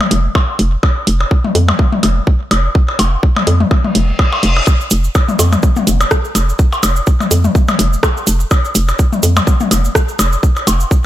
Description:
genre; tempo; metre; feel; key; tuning
minimal techno; 125 BPM; 4/4; swing 56% on 16ths; unclear; A4 = 438 Hz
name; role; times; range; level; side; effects
electronic toms and percussion blips; percussion; 0.0-10.8 s; none; -17 LUFS; left 2 dB; overdrive, small room ambience
hollow knocking FM bass; bass; 0.1-10.8 s; F1 to F2; -13 LUFS; equal; sidechain pumping
garage drum kit; drums; 0.1-10.8 s; hi-hat, rim click; -19 LUFS; right 1 dB; small room ambience
electronic kick drum; drums; 0.4-11.0 s; none; -12 LUFS; equal; small room ambience
reverse cymbal; sound effects; 3.9-4.7 s; none; -21 LUFS; left 2 dB; none
cabasa; percussion; 4.7-11.0 s; none; -23 LUFS; right 5 dB; none
room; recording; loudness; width
little or no reverb; none; -11 LUFS; side -13 dB against mid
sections
0.0-11.1 A section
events
reverse cymbal 3.9-4.7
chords
none

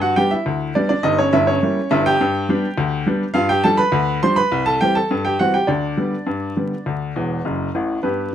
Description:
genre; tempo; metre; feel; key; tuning
ragtime piano; 103 BPM; 2/4; straight; G major; A4 = 440 Hz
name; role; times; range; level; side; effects
clear upright piano; solo; 0.0-8.3 s; E1 to C6; -16 LUFS; equal; none
room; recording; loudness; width
light reverb; vinyl crackle; -16 LUFS; side -10 dB against mid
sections
0.0-8.0 A section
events
upright piano fill 7.2-8.0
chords
0.0 G; 1.0 Gdim7; 2.2 G; 3.4 G7; 4.5 C; 5.7 G/D; 6.9 D

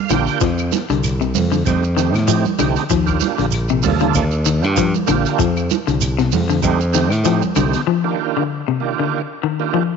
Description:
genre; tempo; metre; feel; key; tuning
afrobeat; 97 BPM; 4/4; swing 55% on 16ths; F mixolydian; A4 = 435 Hz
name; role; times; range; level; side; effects
overdriven tonewheel organ; accompaniment; 0.0-9.8 s; Eb3 to G5; -22 LUFS; right 13 dB; slow rotary speaker, chorus vibrato
semi-hollow electric guitar; arpeggios; 0.1-10.0 s; C3 to F3; -20 LUFS; left 11 dB; none
modern bright fingered electric bass; bass; 0.1-7.7 s; Bb1 to A2; -19 LUFS; equal; none
crunchy breakbeat drum kit; drums; 0.1-7.9 s; hi-hat, kick drum, snare drum; -28 LUFS; left 3 dB; none
claves; percussion; 0.1-7.7 s; none; -36 LUFS; left 12 dB; none
congas; percussion; 0.1-7.7 s; none; -23 LUFS; right 13 dB; none
shekere; percussion; 0.1-7.9 s; none; -26 LUFS; right 9 dB; none
room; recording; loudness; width
light reverb, studio reverb; 1960s-style stereo with parts hard left and right, nothing above 7.7 kHz; -15 LUFS; side -6 dB against mid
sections
0.0-10.0 A section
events
tonewheel organ fill 0.0-0.4; break 7.9-10.0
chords
0.4 F9; 2.9 Ebmaj9; 5.4 F9; 7.9 Ebmaj9

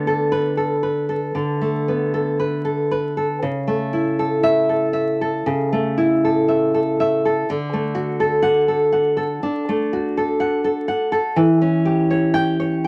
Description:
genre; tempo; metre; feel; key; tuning
romantic piece for solo classical guitar; 57-64 BPM; 4/4; rubato; D major; A4 = 440 Hz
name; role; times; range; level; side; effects
nylon-string guitar; solo; 0.0-12.9 s; C#3 to G5; -20 LUFS; equal; none
room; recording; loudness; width
wet studio reverb, RT60 0.6 s; vinyl crackle; -20 LUFS; mono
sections
0.0-12.9 A section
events
none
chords
0.0 Bm7/D; 3.5 A/C#; 7.5 D; 11.4 C#dim/E

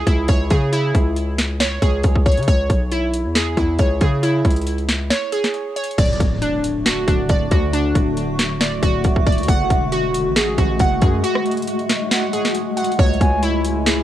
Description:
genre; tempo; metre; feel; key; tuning
hip hop, trap; 137 BPM; 4/4; half-time; C# phrygian; A4 = 440 Hz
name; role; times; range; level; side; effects
glassy wavetable pluck; arpeggios; 0.0-14.0 s; D4 to F#5; -21 LUFS; right 1 dB; chorus, cassette tape, analog delay
distorted 808-style bass; bass; 0.0-14.0 s; D1 to C#3; -22 LUFS; equal; distortion
trap drum kit; drums; 0.1-14.0 s; crash cymbal, hi-hat, kick drum, rim click, snare drum; -18 LUFS; equal; overdrive
granular cloud pad; sustained chords; 6.4-14.0 s; C#3 to F#4; -23 LUFS; left 1 dB; built-in reverb, cassette tape
impact; sound effects; 6.0-7.7 s; none; -29 LUFS; equal; none
silver concert flute; second line; 13.2-13.4 s; G#5; -24 LUFS; left 1 dB; cassette tape, analog delay
room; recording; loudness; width
digital ambience; home recording on cassette; -16 LUFS; side -12 dB against mid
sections
0.0-6.0 A section; 6.0-14.0 B section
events
break 5.1-6.0, 11.2-13.0; impact 6.0-7.7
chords
0.0 C#m; 6.0 D; 9.5 F#madd9; 13.0 C#m

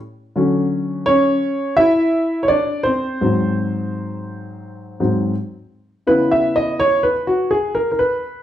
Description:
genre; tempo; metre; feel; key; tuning
hip hop; 84 BPM; 4/4; swing 58% on 16ths; unclear; A4 = 440 Hz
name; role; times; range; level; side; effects
dark grand piano; solo; 0.4-8.4 s; G#2 to E5; -16 LUFS; equal; none
room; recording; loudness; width
wet large studio reverb, RT60 0.9 s; band playing live in one room, nothing above 10.3 kHz; -16 LUFS; side -11 dB against mid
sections
0.0-6.1 A section; 6.1-8.4 B section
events
grand piano solo 0.0-6.1, 6.1-8.4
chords
0.4 Dmaj7; 3.2 G#7; 6.1 C#m7

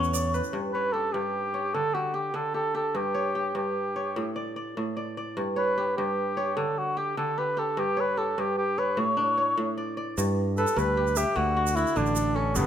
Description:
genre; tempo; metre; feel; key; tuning
west african traditional, West African string and xylophone music; 100 BPM (dotted quarters); 12/8; straight; G lydian; A4 = 442 Hz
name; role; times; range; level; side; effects
dark cor anglais; melody; 0.0-12.7 s; B3 to C#5; -27 LUFS; equal; none
kora; arpeggios; 0.0-12.7 s; G2 to F#5; -30 LUFS; equal; none
fingered electric bass; bass; 0.0-0.4, 10.2-12.7 s; G1 to G2; -28 LUFS; equal; none
egg shaker; percussion; 0.0-0.5, 10.2-12.7 s; none; -36 LUFS; right 8 dB; none
room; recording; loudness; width
light reverb; minimal, uncompressed stereo recording; -25 LUFS; side -9 dB against mid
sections
0.5-10.2 A section; 10.2-12.7 B section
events
cor anglais solo 10.2-12.7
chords
0.0 A; 0.5 G; 1.8 Dsus4; 3.0 N.C.; 4.2 A; 5.4 G; 6.6 Dsus4; 7.8 A9/G (rootless); 9.0 A; 10.2 G; 11.4 D

